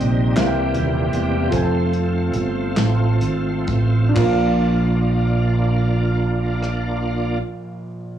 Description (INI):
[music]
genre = slow gospel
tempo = 41-54 BPM (dotted quarters)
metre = 6/8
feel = straight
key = Bb major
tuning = A4 = 442 Hz
[part]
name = warm grand piano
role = accompaniment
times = 0.0-8.2 s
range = Bb1 to A5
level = -23 LUFS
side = left 1 dB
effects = none
[part]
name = bright tonewheel organ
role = sustained chords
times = 0.0-7.4 s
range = E3 to G4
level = -24 LUFS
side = right 2 dB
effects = slow rotary speaker, chorus vibrato
[part]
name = fingered electric bass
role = bass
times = 0.0-7.4 s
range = Eb1 to C2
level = -20 LUFS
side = right 1 dB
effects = none
[part]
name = natural country drum kit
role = drums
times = 0.0-6.9 s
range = crash cymbal, hi-hat, kick drum, rim click, snare drum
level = -26 LUFS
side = equal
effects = cassette tape
[part]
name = group handclap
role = percussion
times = 0.4-4.6 s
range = none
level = -32 LUFS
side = left 1 dB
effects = none
[sound]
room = light reverb, small room ambience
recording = home recording on cassette, studio reverb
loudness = -17 LUFS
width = side -10 dB against mid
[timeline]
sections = 0.0-4.2 A section; 4.2-8.2 B section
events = slowing down 0.0-4.2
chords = 0.4 C7; 1.5 F; 4.2 Bb